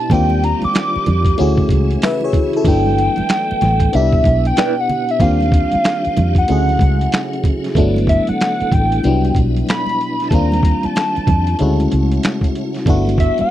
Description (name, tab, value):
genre	R&B, neo-soul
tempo	94 BPM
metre	4/4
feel	swing 64% on 16ths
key	unclear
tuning	A4 = 435 Hz
part	hollow square lead	melody	0.0-13.5 s	E5 to D6	-19 LUFS	equal	chorus
part	FM electric piano	accompaniment	0.0-13.5 s	F#3 to E5	-20 LUFS	left 2 dB	chorus, phaser
part	tonewheel organ	sustained chords	0.0-13.5 s	B2 to G5	-25 LUFS	right 2 dB	fast rotary speaker, overdrive, chorus vibrato
part	vintage muted fingered electric bass	bass	0.1-13.4 s	G1 to F2	-16 LUFS	equal	none
part	boom bap sampler-style drum kit	drums	0.1-13.5 s	finger snaps, hi-hat, kick drum, snare drum	-17 LUFS	equal	none
part	congas	percussion	0.1-13.5 s	none	-26 LUFS	right 4 dB	none
part	electric guitar through a small old amp	second line	4.6-4.7 s	E4 to D5	-18 LUFS	right 6 dB	tremolo
room	little or no reverb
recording	dry, close 1970s-style studio recording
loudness	-13 LUFS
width	side -12 dB against mid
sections	0.0-7.8 A section; 7.8-13.5 B section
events	none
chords	0.1 Ebmaj9; 1.4 Dmaj9; 2.7 Gmaj9; 3.9 Cmaj9; 5.2 Ebmaj9; 6.5 Dmaj9; 7.8 Gmaj9; 9.0 Cmaj9; 10.3 Ebmaj9; 11.6 Dmaj9; 12.9 Gmaj9